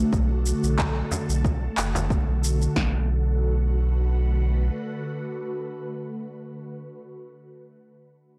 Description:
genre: organic downtempo.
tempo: 91 BPM.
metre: 4/4.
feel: swing 54% on 16ths.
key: B minor.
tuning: A4 = 440 Hz.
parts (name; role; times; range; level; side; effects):
ethereal airy pad; sustained chords; 0.0-6.2 s; D3 to B4; -32 LUFS; equal; ensemble chorus, built-in reverb, phaser, sidechain pumping.
warm sub bass; bass; 0.0-4.7 s; F#1 to B1; -26 LUFS; equal; transformer saturation, sidechain pumping.
deep house drum kit; drums; 0.1-2.9 s; kick drum, snare drum; -28 LUFS; equal; overdrive, small room ambience.
electronic shaker and handclaps; drums; 0.1-2.7 s; none; -33 LUFS; equal; overdrive, small room ambience.
frame drum; percussion; 1.1-2.1 s; none; -34 LUFS; equal; none.
room: moderate lush hall reverb, RT60 1.8 s.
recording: blown-out, overdriven recording, overdrive.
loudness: -25 LUFS.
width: mono.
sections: 0.0-2.8 A section; 2.8-5.4 B section.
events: none.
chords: 0.0 Bm7.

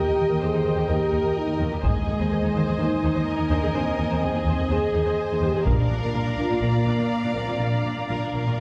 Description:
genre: cinematic, epic orchestral film score.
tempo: 125 BPM.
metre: 4/4.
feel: straight.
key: unclear.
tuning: A4 = 441 Hz.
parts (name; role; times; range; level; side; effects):
warm symphonic violin section; melody; 0.0-8.6 s; Ab4 to F5; -36 LUFS; equal; none.
warm symphonic violin section; second line; 0.0-8.6 s; Eb5 to Bb5; -35 LUFS; equal; none.
rich symphonic viola section; accompaniment; 0.0-8.6 s; D4 to Eb5; -34 LUFS; equal; none.
dark French horn section; sustained chords; 0.0-8.6 s; Ab3 to Ab4; -28 LUFS; equal; none.
clear symphonic double bass section; bass; 0.2-8.4 s; Bb1 to Eb2; -30 LUFS; equal; none.
warm symphonic cello section; bass; 0.2-8.5 s; Eb2 to Bb2; -30 LUFS; equal; none.
taiko ensemble; drums; 1.8-2.8, 5.7-6.6 s; none; -28 LUFS; equal; none.
room: wet scoring stage reverb, RT60 1.6 s.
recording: heard from further back in the room.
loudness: -23 LUFS.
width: mono.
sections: 0.0-8.6 A section.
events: none.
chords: 0.0 Eb; 1.8 Ab/Eb; 5.7 Bb.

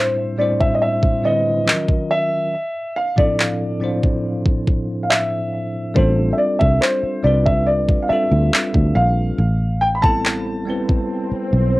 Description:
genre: contemporary R&B.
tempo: 70 BPM.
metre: 4/4.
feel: straight.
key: unclear.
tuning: A4 = 444 Hz.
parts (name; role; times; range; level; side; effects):
dark grand piano; melody; 0.0-11.3 s; C5 to B5; -20 LUFS; equal; cassette tape.
bell-like tine electric piano; accompaniment; 0.0-11.8 s; A2 to C5; -22 LUFS; equal; fast stereo tremolo, cassette tape.
trap drum kit; drums; 0.6-11.1 s; handclaps, kick drum; -18 LUFS; equal; cassette tape.
fingered electric bass; bass; 6.0-11.8 s; A1 to D2; -18 LUFS; equal; none.
swell; sound effects; 11.1-11.8 s; none; -26 LUFS; equal; none.
room: light reverb.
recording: home recording on cassette.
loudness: -16 LUFS.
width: side -20 dB against mid.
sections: 0.0-11.8 A section.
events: swell 11.1-11.8; kick muted 11.1-11.8.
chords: 0.0 Cmaj9/A; 1.7 D#m9; 2.5 Dm9/A; 6.0 G9sus4/A; 9.4 Am9.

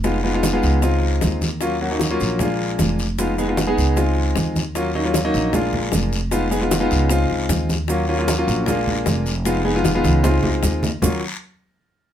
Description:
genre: Afro-Cuban jazz.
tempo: 153 BPM.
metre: 4/4.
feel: straight.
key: Eb minor.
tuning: A4 = 440 Hz.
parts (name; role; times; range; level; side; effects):
clear concert grand piano; accompaniment; 0.0-11.2 s; Gb3 to Ab4; -21 LUFS; left 1 dB; none.
upright bass; bass; 0.0-11.2 s; F1 to Eb2; -22 LUFS; right 1 dB; none.
bongos; percussion; 0.0-11.1 s; none; -26 LUFS; left 6 dB; none.
congas; percussion; 0.0-11.1 s; none; -24 LUFS; right 1 dB; none.
guiro; percussion; 0.0-11.1 s; none; -32 LUFS; left 4 dB; none.
maracas; percussion; 0.0-11.1 s; none; -32 LUFS; right 6 dB; none.
room: light reverb.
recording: minimal, uncompressed stereo recording.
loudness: -17 LUFS.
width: side -10 dB against mid.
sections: 0.0-11.0 A section; 11.0-12.1 B section.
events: drum fill 9.9-11.0.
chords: 0.0 Fm7b5; 0.8 Dbmaj7; 1.6 Ebm7; 2.4 Bb7; 3.2 Fm7b5; 4.0 Dbmaj7; 4.8 Ebm7; 5.5 Bb7; 6.3 Fm7b5; 7.1 Dbmaj7; 7.9 Ebm7; 8.7 Bb7; 9.5 Fm7b5; 10.2 Dbmaj7; 11.0 Ebm7.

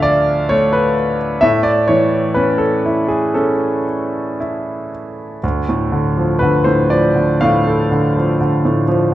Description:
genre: classical, lyrical solo piano.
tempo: 56-65 BPM.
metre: 4/4.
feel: rubato.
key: A major.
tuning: A4 = 440 Hz.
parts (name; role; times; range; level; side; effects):
clear concert grand piano; solo; 0.0-9.1 s; D2 to F5; -13 LUFS; equal; none.
room: moderate recital hall reverb, RT60 1.6 s.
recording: dark, warm production, nothing above 10.6 kHz.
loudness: -13 LUFS.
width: side -14 dB against mid.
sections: 0.0-5.4 A section; 5.4-9.1 B section.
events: none.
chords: 0.0 Dm; 1.4 A; 5.4 Dm.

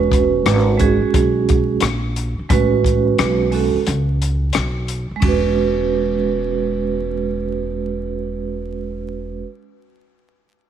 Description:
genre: hip hop, jazz-hop.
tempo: 88 BPM.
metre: 4/4.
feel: swing 63% on 16ths.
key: E major.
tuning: A4 = 441 Hz.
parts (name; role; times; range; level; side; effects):
vibraphone with soft mallets; accompaniment; 0.0-9.4 s; G#3 to B4; -18 LUFS; right 7 dB; none.
upright bass; bass; 0.0-9.4 s; E1 to C#2; -22 LUFS; equal; none.
compact cocktail drum kit; drums; 0.1-5.4 s; hi-hat, kick drum, ride cymbal, rim click; -21 LUFS; left 2 dB; none.
room: light reverb, studio ambience.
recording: 1960s-style stereo, vinyl crackle.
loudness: -16 LUFS.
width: side -9 dB against mid.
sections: 0.0-5.2 A section; 5.2-8.0 B section.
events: break 3.9-5.2.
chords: 0.0 E6; 2.5 Amaj9; 5.2 E6.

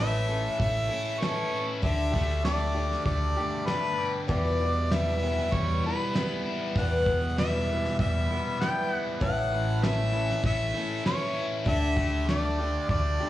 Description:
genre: folk rock and heartland rock.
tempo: 98 BPM.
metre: 4/4.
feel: straight.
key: E dorian.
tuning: A4 = 441 Hz.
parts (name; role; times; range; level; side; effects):
clear harmonica; melody; 0.0-13.3 s; B4 to G5; -31 LUFS; equal; none.
picked old ladder-braced acoustic guitar; accompaniment; 0.0-13.3 s; E2 to A4; -32 LUFS; left 2 dB; none.
cranked stack guitar; riff; 0.0-13.3 s; E2 to G4; -33 LUFS; equal; overdrive, phaser.
hollow-body short-scale picked electric bass; bass; 0.0-13.2 s; A1 to E2; -29 LUFS; equal; none.
soft brush drum kit; drums; 0.6-13.0 s; hi-hat, kick drum, snare drum; -31 LUFS; equal; none.
room: moderate studio reverb, RT60 0.9 s.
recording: worn, warbling old tape, cassette tape, warbly pitch drift, studio reverb.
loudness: -25 LUFS.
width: side -14 dB against mid.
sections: 0.0-13.3 A section.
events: none.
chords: 0.0 A; 1.8 Dsus4; 4.3 Em; 9.2 A; 11.7 Dsus4.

